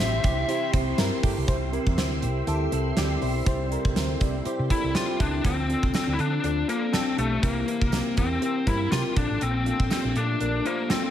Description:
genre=1980s-style pop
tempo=121 BPM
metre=4/4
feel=swing 55% on 16ths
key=unclear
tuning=A4 = 440 Hz
part: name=biting lead guitar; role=melody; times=0.0-0.7, 4.7-11.1 s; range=A3 to E5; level=-27 LUFS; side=left 4 dB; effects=overdrive
part: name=FM electric piano with soft pad layer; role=accompaniment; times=0.0-11.1 s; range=Bb2 to G5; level=-30 LUFS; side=left 1 dB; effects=chorus
part: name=raw garage guitar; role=accompaniment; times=0.0-2.0 s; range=C3 to C4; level=-39 LUFS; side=right 4 dB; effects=none
part: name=ensemble organ-string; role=sustained chords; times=0.0-5.4 s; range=G4 to C6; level=-36 LUFS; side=equal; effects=ensemble chorus
part: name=direct-recorded clean electric guitar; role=riff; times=0.0-11.1 s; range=E3 to A4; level=-36 LUFS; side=right 8 dB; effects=ensemble chorus, ping-pong delay
part: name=hollow-body short-scale fingered electric bass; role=bass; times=0.0-10.6 s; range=G1 to D3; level=-28 LUFS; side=equal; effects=none
part: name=gated 80s drum kit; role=drums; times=0.2-11.0 s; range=hi-hat, kick drum, snare drum, tambourine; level=-26 LUFS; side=right 1 dB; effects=none
part: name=tambourine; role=percussion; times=1.0-1.1, 5.9-11.0 s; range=none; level=-46 LUFS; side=right 7 dB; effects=none
room=light reverb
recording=none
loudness=-22 LUFS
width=side -10 dB against mid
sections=0.0-1.5 A section; 1.5-5.4 B section; 5.4-11.1 C section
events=FM electric piano fill 4.5-5.4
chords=0.0 C; 5.4 Dm7; 7.4 C7; 9.2 Bbmaj7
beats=0.49 0.98 | 1.48 1.98 2.47 2.97 | 3.46 3.96 4.46 4.95 | 5.45 5.94 6.44 6.93 | 7.43 7.93 8.42 8.92 | 9.41 9.91 10.40 10.90

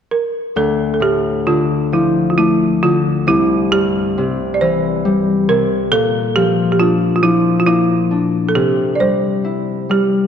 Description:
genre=celtic folk, Celtic slow air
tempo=45 BPM (dotted quarters)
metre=6/8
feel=rubato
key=D minor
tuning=A4 = 440 Hz
part: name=folk marimba with hard mallets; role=melody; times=0.1-10.3 s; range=E4 to D5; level=-16 LUFS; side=right 4 dB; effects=none
part: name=Celtic harp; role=accompaniment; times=0.6-10.3 s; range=C2 to E4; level=-16 LUFS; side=left 4 dB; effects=none
room=wet church reverb, RT60 2.6 s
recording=dark, warm production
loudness=-13 LUFS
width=side -8 dB against mid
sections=0.5-10.3 A section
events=none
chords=0.0 N.C.; 0.5 Dm; 3.3 C; 5.9 Bb; 8.5 C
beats=| 0.54 1.90 | 3.26 4.59 | 5.91 7.21 | 8.54 9.89

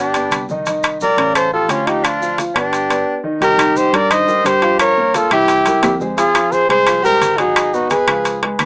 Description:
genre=Afro-Cuban jazz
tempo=174 BPM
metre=4/4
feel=straight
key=C minor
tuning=A4 = 436 Hz
part: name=warm trumpet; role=melody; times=0.0-8.5 s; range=E#4 to Eb5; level=-15 LUFS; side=equal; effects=cassette tape
part: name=clear soprano saxophone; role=second line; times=0.0-8.5 s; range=C#4 to C5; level=-18 LUFS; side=equal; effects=cassette tape
part: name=warm grand piano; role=accompaniment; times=0.0-8.7 s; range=Db3 to F#5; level=-22 LUFS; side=equal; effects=cassette tape, plate reverb
part: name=fingered electric bass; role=bass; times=0.0-8.7 s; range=G1 to G2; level=-28 LUFS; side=equal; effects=none
part: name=congas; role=percussion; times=0.1-8.7 s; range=none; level=-34 LUFS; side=equal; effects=none
part: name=maracas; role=percussion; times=0.1-8.7 s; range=none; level=-34 LUFS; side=equal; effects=none
part: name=timbales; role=percussion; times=0.1-8.7 s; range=none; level=-18 LUFS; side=equal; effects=none
part: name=claves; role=percussion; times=0.3-8.7 s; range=none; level=-26 LUFS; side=equal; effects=none
room=wet booth ambience, RT60 0.2 s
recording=home recording on cassette, small speaker sound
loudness=-12 LUFS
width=side -38 dB against mid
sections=0.0-3.4 A section; 3.4-8.7 B section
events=break 3.1-3.4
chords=0.0 G; 0.7 Cm9; 1.4 Aaug7; 2.0 G7; 2.7 G; 3.4 Cm7; 4.8 Gm7b5; 5.5 C7; 6.2 Fmadd9; 7.6 Abm7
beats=0.31 | 0.66 1.00 1.35 1.70 | 2.04 2.38 2.73 3.08 | 3.42 3.77 4.11 4.45 | 4.80 5.14 5.49 5.83 | 6.18 6.52 6.87 7.21 | 7.56 7.90 8.25 8.59

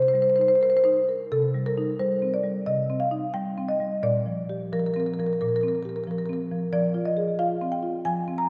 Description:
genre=classical, contemporary piece for solo marimba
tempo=84-92 BPM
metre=4/4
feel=rubato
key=C minor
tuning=A4 = 439 Hz
part: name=marimba with medium mallets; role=solo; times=0.0-8.5 s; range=Bb2 to Bb5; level=-25 LUFS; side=equal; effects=none
room=wet church reverb, RT60 2.7 s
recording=dark, warm production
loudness=-25 LUFS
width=mono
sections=0.0-1.3 A section; 1.3-8.5 B section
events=none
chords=0.0 Cm7; 1.3 Cm; 4.0 Bb69; 6.7 Fm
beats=0.61 | 1.31 1.99 2.67 3.35 | 4.02 4.72 5.40 6.06 | 6.73 7.38 8.04

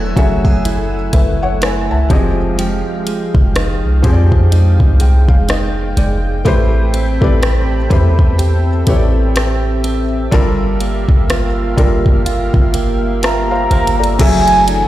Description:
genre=contemporary R&B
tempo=62 BPM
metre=4/4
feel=swing 58% on 16ths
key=unclear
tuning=A4 = 440 Hz
part: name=felt-muted upright piano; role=accompaniment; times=0.0-14.9 s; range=F3 to A5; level=-20 LUFS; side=left 3 dB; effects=none
part: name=lush unison pad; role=sustained chords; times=0.0-14.9 s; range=E3 to E6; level=-23 LUFS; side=left 1 dB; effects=chorus
part: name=direct-recorded clean electric guitar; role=arpeggios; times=0.0-14.9 s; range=F3 to B4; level=-22 LUFS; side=right 5 dB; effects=tape echo
part: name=clean 808-style bass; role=bass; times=0.0-14.9 s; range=E1 to F2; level=-14 LUFS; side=equal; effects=none
part: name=smooth R&B drum kit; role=drums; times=0.2-14.9 s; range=crash cymbal, hi-hat, kick drum, rim click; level=-15 LUFS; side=equal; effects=none
part: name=soft octave-layered synth lead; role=melody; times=13.2-14.9 s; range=G#5 to Bb5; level=-14 LUFS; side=right 1 dB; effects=chorus, phaser
room=digital ambience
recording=played on a big sound system in a bare room, stone room reverb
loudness=-11 LUFS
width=side -14 dB against mid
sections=0.0-14.2 A section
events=felt piano fill 4.5-6.5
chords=0.0 F#m9; 2.1 Fm9; 6.5 Am9; 10.3 Gm9; 14.2 F#m9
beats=0.65 1.61 | 2.58 3.55 4.52 5.49 | 6.45 7.42 8.39 9.36 | 10.32 11.29 12.26 13.23 | 14.20

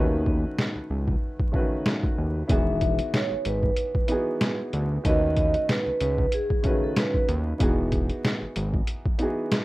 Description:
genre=hip hop, boom-bap hip-hop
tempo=94 BPM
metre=4/4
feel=swing 55% on 16ths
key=E major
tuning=A4 = 438 Hz
part: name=warm upright piano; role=accompaniment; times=0.0-9.6 s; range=C#3 to B4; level=-30 LUFS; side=equal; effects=high-pass filter, low-pass filter
part: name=fat analog bass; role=bass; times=0.0-8.8 s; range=E1 to D#2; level=-26 LUFS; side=equal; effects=none
part: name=trip hop sampler-style drum kit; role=drums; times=0.3-9.6 s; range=hi-hat, kick drum, snare drum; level=-25 LUFS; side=equal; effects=none
part: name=vibraphone with medium hard mallets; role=melody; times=2.5-7.3 s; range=G#4 to E5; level=-27 LUFS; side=right 1 dB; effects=high-pass filter, low-pass filter, digital delay
room=light reverb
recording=rough home demo mix, vinyl crackle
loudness=-22 LUFS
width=side -19 dB against mid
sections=0.0-9.6 A section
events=break 0.0-2.5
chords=0.0 B7; 2.5 Emaj7; 5.0 B7; 7.6 Emaj7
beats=0.58 1.22 1.86 | 2.50 3.13 3.77 4.41 | 5.05 5.69 6.33 6.96 | 7.60 8.24 8.88 9.52

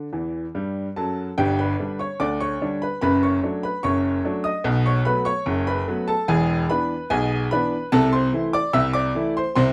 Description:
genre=ragtime piano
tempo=73 BPM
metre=2/4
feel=straight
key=D major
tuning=A4 = 439 Hz
part: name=bright baby grand piano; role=solo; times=0.0-9.7 s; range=E1 to E6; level=-22 LUFS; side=equal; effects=none
room=light reverb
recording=dry, close 1970s-style studio recording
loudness=-23 LUFS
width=mono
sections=0.0-1.4 A section; 1.4-9.7 B section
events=grand piano fill 0.1-1.4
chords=0.0 D; 1.4 G; 3.0 D/F#; 4.7 B7; 6.3 E7; 7.9 Am/C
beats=0.55 | 1.38 2.20 | 3.02 3.84 | 4.66 5.47 | 6.29 7.11 | 7.92 8.74 | 9.56

